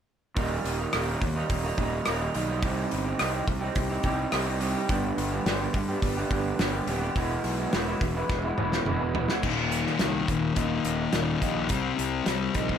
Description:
quiet-loud alternative rock; 106 BPM; 4/4; straight; Eb major; A4 = 440 Hz
electric guitar through a small old amp; arpeggios; 0.4-12.8 s; Eb2 to G4; -30 LUFS; right 2 dB; lush chorus
fuzz fingered electric bass; bass; 0.4-12.8 s; Eb1 to G2; -31 LUFS; equal; overdrive
loose indie drum kit; drums; 0.4-12.8 s; crash cymbal, hi-hat, kick drum, rim click, snare drum, toms; -30 LUFS; equal
thick fuzz guitar; riff; 9.4-12.8 s; Eb2 to C4; -27 LUFS; left 8 dB; distortion
light reverb; -25 LUFS; side -8 dB against mid
0.4-9.4 A section; 9.4-12.8 B section
drum fill 8.3-9.4
0.4 Eb; 2.6 Cm; 4.9 G; 7.2 E; 9.4 Eb; 11.7 Cm
| 0.38 0.94 1.51 2.07 | 2.64 3.21 3.77 4.34 | 4.90 5.47 6.04 6.60 | 7.17 7.74 8.30 8.87 | 9.44 10.00 10.57 11.14 | 11.70 12.27

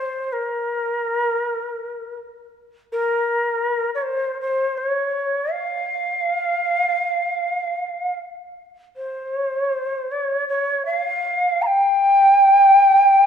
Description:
japanese traditional, Japanese chamber music; free time; C in sen; A4 = 442 Hz
breathy shakuhachi; solo; 0.0-13.3 s; Bb4 to Bb5; -17 LUFS; equal
moderate concert hall reverb, RT60 2.1 s; minimal, uncompressed stereo recording; -17 LUFS; side -7 dB against mid
0.0-13.3 A section
free time

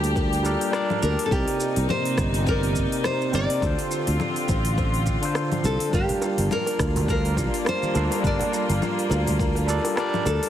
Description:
sunset chillout; 104 BPM; 4/4; swing 57% on 16ths; G minor; A4 = 440 Hz
overdriven tine electric piano; accompaniment; 0.0-10.5 s; C3 to A5; -28 LUFS; equal; auto-pan, ping-pong delay
dark studio string section; sustained chords; 0.0-10.5 s; C3 to G4; -30 LUFS; left 1 dB
buzzing kalimba; arpeggios; 0.0-10.4 s; F4 to C5; -33 LUFS; left 2 dB; ping-pong delay
sustaining fretless electric bass; bass; 0.0-10.4 s; G1 to D2; -24 LUFS; equal
deep house drum kit; drums; 0.0-10.5 s; congas, hi-hat, rim click, shaker; -31 LUFS; left 2 dB
electronic kick drum; drums; 0.2-9.5 s; -28 LUFS; equal
nylon-string guitar; melody; 1.0-10.5 s; G4 to D5; -28 LUFS; left 1 dB; ping-pong delay
bongos and congas; percussion; 5.9-10.4 s; -34 LUFS; right 3 dB
light reverb, small room ambience; heavily compressed radio sound; -21 LUFS; side -11 dB against mid
0.0-10.5 A section
0.0 Gm7; 1.3 Cm7; 3.6 Dm7; 5.9 Gm7
0.16 0.74 | 1.32 1.89 2.47 3.05 | 3.62 4.20 4.78 5.36 | 5.93 6.51 7.09 7.66 | 8.24 8.82 9.39 9.97

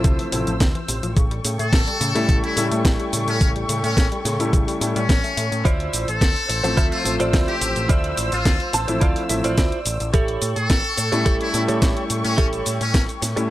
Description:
nu-disco, nu disco; 107 BPM; 4/4; straight; D minor; A4 = 444 Hz
warm concert grand piano; accompaniment; 0.0-13.5 s; F3 to E4; -26 LUFS; left 1 dB; sidechain pumping
muted studio string section; sustained chords; 0.0-13.5 s; A4 to E6; -29 LUFS; left 1 dB; sidechain pumping
analog pluck; arpeggios; 0.0-5.6 s; C3 to C#4; -30 LUFS; left 3 dB; chorus, sidechain pumping, tape echo
overdriven picked electric bass; bass; 0.0-13.5 s; A1 to A2; -26 LUFS; equal; sidechain pumping
electronic kick drum; drums; 0.0-13.1 s; -19 LUFS; equal
house drum kit; drums; 0.0-13.5 s; cabasa, hi-hat, snare drum; -26 LUFS; equal
muted trumpet section; melody; 1.6-13.0 s; C#4 to A4; -26 LUFS; left 2 dB; tape echo
direct-recorded clean electric guitar; riff; 5.6-13.4 s; E4 to A5; -25 LUFS; right 3 dB; analog chorus
little or no reverb; dry, gritty hardware recording; -18 LUFS; side -15 dB against mid
0.0-13.5 A section
clean electric guitar fill 8.5-10.1
0.0 Dm9; 1.2 A7; 5.7 Dm9; 10.1 A7
0.04 0.60 | 1.17 1.73 2.29 2.85 | 3.41 3.97 4.53 5.09 | 5.65 6.21 6.77 7.33 | 7.89 8.46 9.02 9.58 | 10.14 10.70 11.26 11.82 | 12.38 12.94

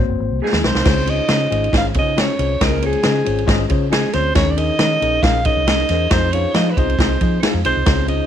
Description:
uptempo 1960s-style soul; 137 BPM; 4/4; straight; A4 = 440 Hz
tine electric piano; accompaniment; 0.0-8.3 s; Db3 to F5; -23 LUFS; left 13 dB
vintage muted fingered electric bass; bass; 0.0-8.2 s; Gb1 to F3; -21 LUFS; right 1 dB
breathy alto saxophone; melody; 0.4-8.3 s; Ab4 to F5; -20 LUFS; right 1 dB
vibraphone with hard mallets; second line; 0.4-8.3 s; Ab3 to F4; -28 LUFS; right 14 dB
electric guitar through a small old amp; stabs; 0.4-0.5 s; Gb3 to Ab4; -30 LUFS; right 13 dB; wide subtle chorus
swinging big-band drum kit; drums; 0.5-8.2 s; crash cymbal, kick drum, ride cymbal, snare drum; -18 LUFS; equal
little or no reverb; 1960s-style stereo with parts hard left and right; -14 LUFS; side -9 dB against mid
0.9-8.3 A section
drum fill 0.0-0.9
0.0 Ab7; 0.9 Dbmaj7; 4.4 Eb7sus4; 6.1 Fm7
0.42 | 0.86 1.29 1.73 2.17 | 2.61 3.05 3.49 3.92 | 4.36 4.80 5.24 5.68 | 6.12 6.55 6.99 7.43 | 7.87

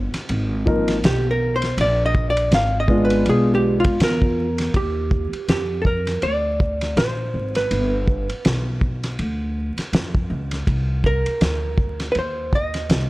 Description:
hip hop, jazz-hop; 81 BPM; 4/4; swing 57% on 16ths; Eb major; A4 = 440 Hz
upright bass; bass; 0.0-13.1 s; G1 to F2; -23 LUFS; equal
cloth-damped thuddy drum kit; drums; 0.1-13.1 s; hi-hat, kick drum, ride cymbal, snare drum; -22 LUFS; equal
dark grand piano; accompaniment; 0.7-3.9 s; F3 to Bb4; -20 LUFS; left 1 dB
vintage hollow-body jazz guitar; melody; 1.1-13.1 s; F4 to F5; -22 LUFS; right 1 dB
light reverb, studio reverb; dry, gritty hardware recording, vinyl crackle; -18 LUFS; side -19 dB against mid
0.0-4.7 A section; 4.7-13.1 B section
hollow-body jazz guitar solo 0.0-4.7
0.0 Fm7; 1.8 Bb7b9; 4.7 Ebmaj9; 7.7 G7; 10.7 Cm9
0.30 1.04 | 1.78 2.52 3.26 4.00 | 4.74 5.49 6.23 6.97 | 7.71 8.45 9.19 9.93 | 10.67 11.41 12.15 12.89

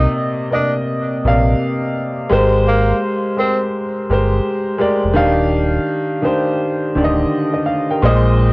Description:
hip hop; 84 BPM; 4/4; swing 64% on 16ths; A4 = 438 Hz
bright tenor saxophone; melody; 0.0-3.6 s; Bb3 to Eb4; -21 LUFS; equal; low-pass filter, cassette tape, plate reverb, analog delay
clear upright piano; accompaniment; 0.0-8.5 s; Bb2 to G5; -15 LUFS; equal; cassette tape, low-pass filter
sub bass with octave; bass; 0.0-8.5 s; D1 to Bb1; -16 LUFS; equal
moderate studio reverb, RT60 0.5 s; home recording on cassette; -14 LUFS; side -24 dB against mid
0.0-8.5 A section
0.0 Cm9; 2.3 Abmaj9; 5.2 Ebmaj9; 8.0 Bb9sus4
0.16 0.87 1.59 | 2.30 3.02 3.73 4.44 | 5.16 5.87 6.59 7.30 | 8.02

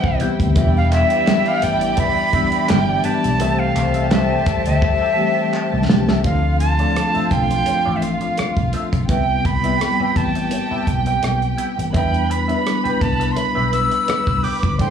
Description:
lush 1970s-style soul; 84 BPM; 4/4; swing 54% on 16ths; A4 = 440 Hz
breathy bright jazz flute; melody; 0.0-14.9 s; E5 to E6; -21 LUFS; right 2 dB; slapback echo
warm studio violin section; second line; 0.0-14.9 s; E4 to C6; -26 LUFS; equal; slapback echo
tine electric piano; accompaniment; 0.0-14.9 s; E3 to D5; -23 LUFS; left 4 dB; medium tremolo, slapback echo
muted trombone section; stabs; 0.0-5.8 s; E3 to E4; -27 LUFS; left 4 dB; slapback echo
vintage muted fingered electric bass; bass; 0.0-14.9 s; E1 to E2; -20 LUFS; equal
damped 70s drum kit; drums; 0.0-14.9 s; hi-hat, kick drum, rim click, snare drum; -21 LUFS; right 1 dB; slapback echo
electric guitar through a small old amp; riff; 0.2-14.9 s; C4 to G5; -30 LUFS; right 1 dB; wah, slapback echo
group handclap; percussion; 0.9-5.7 s; -33 LUFS; left 5 dB; slapback echo
light reverb; live gig heard through the venue's PA, club reverb, small room ambience; -16 LUFS; side -8 dB against mid
0.0-6.2 A section; 6.2-14.9 B section
drum fill 4.8-6.2
0.0 Cmaj7; 0.6 Em7; 3.4 C6; 6.2 Dm7; 9.1 Cmaj7; 11.9 Em7
| 0.56 1.27 1.98 2.69 | 3.40 4.11 4.82 5.53 | 6.24 6.96 7.67 8.38 | 9.09 9.80 10.52 11.23 | 11.94 12.65 13.37 14.08 | 14.79

